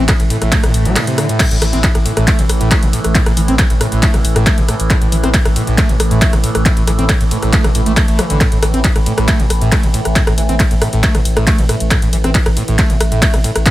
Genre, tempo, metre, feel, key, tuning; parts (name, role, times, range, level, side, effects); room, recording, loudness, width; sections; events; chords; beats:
driving peak-time techno; 137 BPM; 4/4; straight; A4 = 440 Hz
screaming distorted acid line; riff; 0.0-13.7 s; A2 to C4; -19 LUFS; equal; distortion, lush chorus, sidechain pumping, dub echo
saturated sub bass; bass; 0.0-13.7 s; A1; -17 LUFS; equal; overdrive, sidechain pumping, low-pass filter
overtone-sweeping drone; drone; 0.0-13.7 s; A2 to E3; -21 LUFS; right 1 dB; chorus, built-in reverb, sidechain pumping
electronic kick drum; drums; 0.1-13.7 s; -14 LUFS; equal; overdrive
punchy analog drum machine; drums; 0.1-13.7 s; crash cymbal, handclaps, hi-hat, ride cymbal, rim click; -18 LUFS; equal; overdrive
light reverb; -11 LUFS; side -15 dB against mid
0.0-13.7 A section
0.0 A5
0.09 0.52 0.96 | 1.40 1.84 2.28 2.71 | 3.15 3.59 4.03 4.47 | 4.90 5.34 5.78 6.22 | 6.66 7.09 7.53 7.97 | 8.41 8.85 9.28 9.72 | 10.16 10.60 11.04 11.47 | 11.91 12.35 12.79 13.22 | 13.66